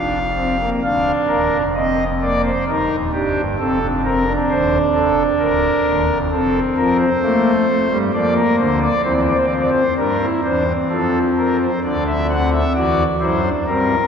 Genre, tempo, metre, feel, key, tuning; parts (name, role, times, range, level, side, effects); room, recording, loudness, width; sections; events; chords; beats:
classical, baroque-style 3-part fugue for pipe organ; 65 BPM; 3/4; straight; Bb major; A4 = 440 Hz
pipe organ, foundations; solo; 0.0-14.1 s; D1 to F#5; -15 LUFS; equal
wet cathedral reverb, RT60 4.6 s; heard from further back in the room; -15 LUFS; side -7 dB against mid
0.8-11.8 A section; 11.8-14.1 B section
0.0 F5; 0.8 Bb/D; 2.7 Ebmaj9; 3.6 F7; 5.4 Bb/D; 6.3 F; 8.1 Bbadd9; 9.1 C7/E; 10.9 F; 11.8 D7
| 0.82 1.75 2.67 | 3.59 4.50 5.40 | 6.31 7.22 8.14 | 9.05 9.97 10.89 | 11.82 12.76 13.67